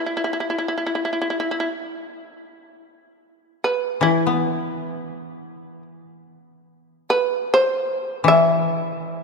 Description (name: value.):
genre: japanese traditional, Japanese chamber music.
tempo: free time.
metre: none.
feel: none.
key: unclear.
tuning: A4 = 440 Hz.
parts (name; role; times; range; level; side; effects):
shamisen; melody; 0.0-9.2 s; E4 to E5; -21 LUFS; right 1 dB; none.
koto; accompaniment; 4.0-9.2 s; E3 to B3; -21 LUFS; left 4 dB; none.
room: wet church reverb, RT60 3.5 s.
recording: minimal, uncompressed stereo recording, lossy compression artefacts.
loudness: -19 LUFS.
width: side -4 dB against mid.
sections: 0.0-6.0 A section; 6.0-9.2 A section.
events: none.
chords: none.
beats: free time.